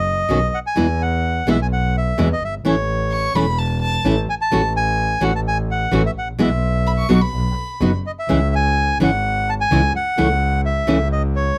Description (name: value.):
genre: tango.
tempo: 128 BPM.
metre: 4/4.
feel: rubato.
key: E major.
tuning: A4 = 440 Hz.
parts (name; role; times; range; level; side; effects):
bandoneon; melody; 0.0-11.6 s; C#5 to A5; -23 LUFS; equal; none.
clear double bass; bass; 0.0-11.5 s; E1 to E2; -23 LUFS; equal; none.
nylon-string guitar; accompaniment; 0.3-11.0 s; B2 to F#4; -20 LUFS; equal; none.
warm violin; second line; 3.1-7.9 s; A5 to C#6; -27 LUFS; equal; none.
room: little or no reverb.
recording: close, detailed microphones.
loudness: -19 LUFS.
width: mono.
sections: 0.0-11.6 A section.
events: none.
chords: 0.0 B; 0.8 E; 2.6 A; 4.5 F#m7/A; 6.4 E5/B; 7.3 B5; 8.3 C#m; 10.2 A/C#.